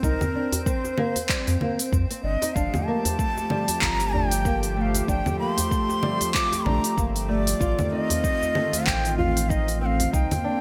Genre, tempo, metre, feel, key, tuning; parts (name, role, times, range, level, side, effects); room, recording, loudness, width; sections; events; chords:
organic downtempo; 95 BPM; 4/4; swing 57% on 16ths; G minor; A4 = 440 Hz
breathy bright bansuri; melody; 0.0-10.6 s; Bb4 to D6; -30 LUFS; equal; delay
warm analog pad; sustained chords; 0.0-10.6 s; Eb3 to G4; -32 LUFS; equal; chorus, sidechain pumping
flamenco guitar; arpeggios; 0.0-10.6 s; F3 to F4; -33 LUFS; equal; subtle chorus, delay
warm sub bass; bass; 0.0-10.3 s; G1 to F2; -28 LUFS; equal; sidechain pumping
deep house drum kit; drums; 0.0-10.4 s; cabasa, congas, handclaps, hi-hat; -30 LUFS; equal; gated reverb
electronic kick drum; drums; 0.0-10.3 s; -29 LUFS; equal
drifting glass-harmonics texture; texture; 0.0-10.6 s; C4 to C5; -44 LUFS; equal
djembe; percussion; 0.2-10.4 s; -34 LUFS; equal
light reverb; bright 1980s-style digital production; -24 LUFS; mono
0.0-10.6 A section
0.0 C7sus2; 2.6 Gm9; 7.6 F7/A